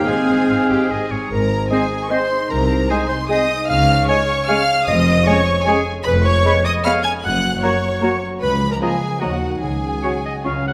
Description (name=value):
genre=cinematic, playful, whimsical film cue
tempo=152 BPM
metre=3/4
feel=straight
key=Ab major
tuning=A4 = 440 Hz
part: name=rich chamber violin section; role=melody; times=0.0-10.6 s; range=F#5 to G#6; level=-27 LUFS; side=equal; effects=none
part: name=bright oboe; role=second line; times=0.0-10.7 s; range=C5 to F#5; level=-29 LUFS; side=equal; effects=none
part: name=clear clarinet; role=second line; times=0.0-10.6 s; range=F#4 to G#5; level=-25 LUFS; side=equal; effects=none
part: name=rich chamber violin section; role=second line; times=0.0-10.6 s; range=F#4 to Ab5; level=-27 LUFS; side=equal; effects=none
part: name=mellow bassoon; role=accompaniment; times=0.0-10.7 s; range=C#3 to Ab3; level=-30 LUFS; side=equal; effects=none
part: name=rich chamber viola section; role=accompaniment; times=0.0-10.5 s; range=Ab3 to Ab4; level=-28 LUFS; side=equal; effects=none
part: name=mellow French horn section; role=sustained chords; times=0.0-10.6 s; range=G#3 to Ab4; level=-28 LUFS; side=equal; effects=none
part: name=concert harp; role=arpeggios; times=0.0-10.7 s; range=F2 to Ab5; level=-28 LUFS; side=equal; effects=none
part: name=dark chamber cello section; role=bass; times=0.0-10.7 s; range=C#2 to Ab4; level=-28 LUFS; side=equal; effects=none
part: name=warm studio double bass section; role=bass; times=0.1-10.7 s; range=F1 to D#2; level=-26 LUFS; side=equal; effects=none
part: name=bright concert flute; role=second line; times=1.7-10.5 s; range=Eb5 to C#6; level=-30 LUFS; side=equal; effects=none
room=moderate scoring stage reverb, RT60 1.7 s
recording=none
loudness=-18 LUFS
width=mono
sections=0.0-1.3 A section; 1.3-10.7 B section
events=none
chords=0.1 Ab; 2.5 Ab/C; 3.7 Db; 4.9 Db/F; 6.1 C#7/E#; 7.2 F#; 8.4 C#69; 9.2 D#m; 9.6 C#sus4